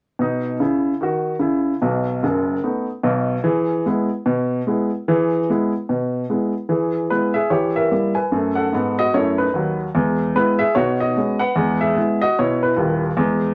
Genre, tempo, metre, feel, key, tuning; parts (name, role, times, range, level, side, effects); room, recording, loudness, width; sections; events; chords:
jazz, stride piano; 148 BPM; 4/4; swing 60% on 8ths; E major; A4 = 444 Hz
warm upright piano; solo; 0.2-13.5 s; D#1 to G#5; -20 LUFS; equal
moderate club reverb, RT60 0.5 s; -20 LUFS; mono
0.2-6.7 A section; 6.7-13.5 B section
0.2 E5/B; 1.8 B7; 3.4 E; 7.5 Em; 8.3 B7/F#; 9.9 E; 10.7 B69; 11.6 E